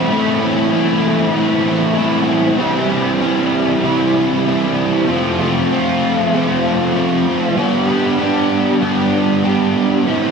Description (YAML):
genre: rock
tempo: 96 BPM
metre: 4/4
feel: straight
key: A minor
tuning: A4 = 440 Hz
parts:
  - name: overdriven electric guitar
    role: solo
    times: 0.0-10.3 s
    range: F2 to G4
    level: -13 LUFS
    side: equal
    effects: analog chorus
room: wet plate reverb, RT60 2.9 s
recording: dreamy mix soaked in reverb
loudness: -13 LUFS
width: side -5 dB against mid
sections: 0.1-10.3 A section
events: none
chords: 0.1 Am; 2.6 C; 5.1 F; 7.6 G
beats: | 0.09 0.71 1.34 1.96 | 2.59 3.21 3.83 4.46 | 5.08 5.70 6.33 6.95 | 7.58 8.20 8.82 9.45 | 10.07